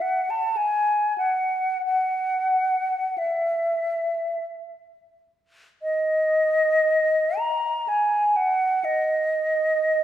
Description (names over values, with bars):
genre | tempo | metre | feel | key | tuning
classical, free, expressive piece for unaccompanied flute | 36-64 BPM | 3/4 | rubato | E major | A4 = 444 Hz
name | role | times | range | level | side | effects
mellow hollow silver concert flute | solo | 0.0-10.0 s | D#5 to A#5 | -20 LUFS | equal | none
room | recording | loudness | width
wet recital hall reverb, RT60 1.6 s | heard from further back in the room | -20 LUFS | side -11 dB against mid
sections
0.0-5.8 A section; 5.8-10.0 B section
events
none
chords
none